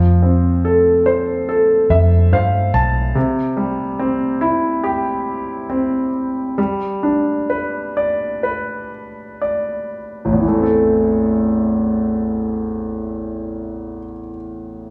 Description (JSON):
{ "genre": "pop", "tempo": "58-72 BPM", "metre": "4/4", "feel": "straight", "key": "A minor", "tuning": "A4 = 440 Hz", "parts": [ { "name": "clear concert grand piano", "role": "accompaniment", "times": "0.0-14.9 s", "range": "A1 to A5", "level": "-19 LUFS", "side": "equal", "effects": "none" }, { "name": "vintage muted fingered electric bass", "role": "bass", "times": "0.0-3.1 s", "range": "B1 to G2", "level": "-17 LUFS", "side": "equal", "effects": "none" } ], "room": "light reverb, small room ambience", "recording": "live gig heard through the venue's PA, club reverb", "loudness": "-18 LUFS", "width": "mono", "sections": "0.0-10.4 A section; 10.4-14.5 B section", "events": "grand piano fill 1.5-3.2; slowing down 3.2-10.4", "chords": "0.0 F; 3.2 C; 6.6 G; 10.4 Am" }